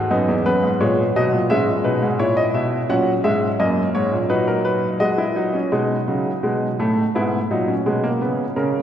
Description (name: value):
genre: classical, baroque-style 4-part fugue for grand piano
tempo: 85 BPM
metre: 4/4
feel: straight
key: E major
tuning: A4 = 442 Hz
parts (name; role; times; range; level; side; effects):
- clear baby grand piano; solo; 0.0-8.8 s; E2 to F#5; -17 LUFS; equal; none
room: wet cathedral reverb, RT60 5.3 s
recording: recorded in a church or concert hall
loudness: -17 LUFS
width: side -10 dB against mid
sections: 0.0-5.7 A section; 5.7-8.8 B section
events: none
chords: 0.1 B; 1.5 E/G#; 2.9 F#7; 4.3 B; 5.7 B7; 7.2 E/G#